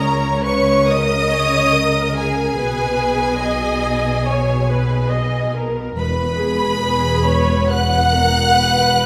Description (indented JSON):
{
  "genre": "classical, slow romantic movement for string orchestra",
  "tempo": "64-74 BPM",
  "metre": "4/4",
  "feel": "rubato",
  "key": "G# minor",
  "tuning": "A4 = 440 Hz",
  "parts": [
    { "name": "clear studio violin section", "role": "melody", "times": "0.0-9.1 s", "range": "G#5 to F#6", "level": "-24 LUFS", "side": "equal", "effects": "none" },
    { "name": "rich studio violin section", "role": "second line", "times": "0.0-9.1 s", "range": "G#4 to F#5", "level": "-23 LUFS", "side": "equal", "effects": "none" },
    { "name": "dark studio viola section", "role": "accompaniment", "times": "0.0-9.1 s", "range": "G#4 to D#5", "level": "-24 LUFS", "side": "equal", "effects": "none" },
    { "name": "rich studio double bass section", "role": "bass", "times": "0.0-9.1 s", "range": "E1 to C#2", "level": "-24 LUFS", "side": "equal", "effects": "none" },
    { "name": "warm studio cello section", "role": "bass", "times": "0.0-9.1 s", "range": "E2 to C#3", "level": "-26 LUFS", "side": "equal", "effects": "none" }
  ],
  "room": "wet recital hall reverb, RT60 1.6 s",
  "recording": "recorded in a church or concert hall",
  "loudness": "-17 LUFS",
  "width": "mono",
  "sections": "0.0-9.1 A section",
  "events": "none",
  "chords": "0.0 C#5; 2.6 G#m/B; 6.0 E5"
}